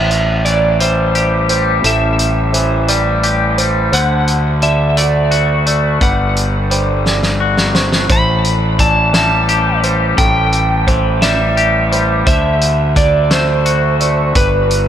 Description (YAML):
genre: post-rock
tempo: 58 BPM (dotted quarters)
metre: 6/8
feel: straight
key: A dorian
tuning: A4 = 440 Hz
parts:
  - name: electric slide guitar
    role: melody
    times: 0.0-14.9 s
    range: B4 to B5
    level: -17 LUFS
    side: right 2 dB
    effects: ping-pong delay
  - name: felt-muted upright piano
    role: arpeggios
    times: 0.0-14.9 s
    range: A4 to E5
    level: -22 LUFS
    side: right 4 dB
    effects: ping-pong delay
  - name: twangy electric guitar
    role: arpeggios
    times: 0.0-14.9 s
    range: A2 to G4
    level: -18 LUFS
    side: left 4 dB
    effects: lush chorus, ping-pong delay
  - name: fuzz fingered electric bass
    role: bass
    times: 0.0-14.9 s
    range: G1 to D2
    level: -16 LUFS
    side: equal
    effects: overdrive
  - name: loose indie drum kit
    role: drums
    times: 0.1-14.9 s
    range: hi-hat, kick drum, snare drum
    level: -17 LUFS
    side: equal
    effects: none
room: moderate cathedral reverb, RT60 5.4 s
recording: dreamy mix soaked in reverb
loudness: -11 LUFS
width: side -10 dB against mid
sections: 0.0-14.9 A section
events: drum fill 7.1-8.1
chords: 0.0 Am7; 3.9 D; 6.0 Gmaj7; 8.1 Am7; 12.3 D; 14.4 G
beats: 0.80 | 1.84 2.89 | 3.93 4.97 | 6.01 7.06 | 8.10 9.14 | 10.18 11.23 | 12.27 13.31 | 14.36